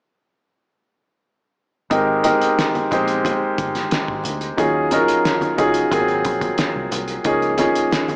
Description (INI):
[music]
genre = lush 1970s-style soul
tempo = 90 BPM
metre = 4/4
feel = straight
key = Ab major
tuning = A4 = 440 Hz
[part]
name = clear baby grand piano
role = accompaniment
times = 1.9-8.2 s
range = F3 to C5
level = -20 LUFS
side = equal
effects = none
[part]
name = vintage muted fingered electric bass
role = bass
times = 1.9-7.8 s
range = G1 to Eb2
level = -35 LUFS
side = equal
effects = none
[part]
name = cloth-damped thuddy drum kit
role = drums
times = 1.9-8.2 s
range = hi-hat, kick drum, snare drum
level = -27 LUFS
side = equal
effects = none
[part]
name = congas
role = percussion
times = 1.9-8.2 s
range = none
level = -34 LUFS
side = equal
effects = none
[sound]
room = light reverb, studio reverb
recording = small speaker sound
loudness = -19 LUFS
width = mono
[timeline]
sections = 1.9-8.2 A section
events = none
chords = 1.9 Abmaj9; 4.6 Ebm11; 5.9 Ab13; 7.3 Db69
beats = | 1.91 2.58 3.25 3.92 | 4.58 5.25 5.92 6.58 | 7.25 7.92